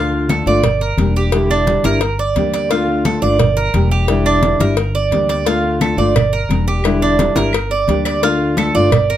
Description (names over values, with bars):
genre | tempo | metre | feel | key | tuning
latin, Cuban son and guajira | 174 BPM | 4/4 | straight | unclear | A4 = 440 Hz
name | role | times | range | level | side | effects
fingerpicked steel-string acoustic guitar | accompaniment | 0.0-9.0 s | D3 to G4 | -18 LUFS | left 3 dB | none
Cuban tres | arpeggios | 0.0-9.2 s | D4 to D5 | -18 LUFS | right 5 dB | none
upright bass | bass | 0.0-9.2 s | E1 to D2 | -19 LUFS | equal | none
congas | percussion | 0.1-9.2 s | none | -21 LUFS | equal | none
cowbell | percussion | 0.3-9.1 s | none | -23 LUFS | left 8 dB | none
claves | percussion | 5.8-9.1 s | none | -28 LUFS | left 5 dB | none
room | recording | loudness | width
light reverb | close, detailed microphones | -13 LUFS | side -11 dB against mid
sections
0.0-9.2 A section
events
none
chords
0.0 Dm; 0.6 Em7b5; 2.0 Gm; 2.7 Dm; 3.4 Em7b5; 4.8 Gm; 5.5 Dm; 6.2 Em7b5; 7.5 Gm; 8.2 Dm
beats
0.29 0.64 0.98 | 1.32 1.67 2.02 2.36 | 2.71 3.05 3.40 3.74 | 4.08 4.43 4.78 5.12 | 5.46 5.81 6.16 6.50 | 6.85 7.19 7.54 7.88 | 8.23 8.57 8.92